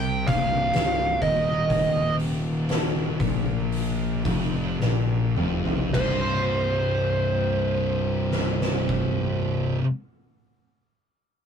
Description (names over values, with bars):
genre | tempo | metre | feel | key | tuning
stoner and doom metal | 51-65 BPM | 4/4 | straight | C minor | A4 = 439 Hz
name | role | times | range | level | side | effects
fuzz lead guitar | melody | 0.0-9.8 s | C5 to G5 | -25 LUFS | right 2 dB | wah, distortion
tonewheel organ | sustained chords | 0.0-9.8 s | C3 to D4 | -40 LUFS | equal | slow rotary speaker, overdrive, chorus vibrato
thick fuzz guitar | riff | 0.0-9.8 s | C2 to C3 | -28 LUFS | left 8 dB | distortion
thick fuzz guitar | riff | 0.0-9.8 s | C2 to C3 | -30 LUFS | right 6 dB | distortion
fuzz fingered electric bass | bass | 0.0-9.8 s | C1 to C2 | -30 LUFS | equal | overdrive
oversized low-tuned drum kit | drums | 0.3-9.2 s | crash cymbal, hi-hat, kick drum, snare drum, toms | -28 LUFS | equal | none
room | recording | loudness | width
moderate booth ambience, RT60 0.2 s | rough rehearsal-room recording | -22 LUFS | side -7 dB against mid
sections
0.0-5.9 A section; 5.9-10.7 B section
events
slowing down 0.0-5.9; drum fill 4.8-5.9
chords
0.0 Cm; 5.9 C5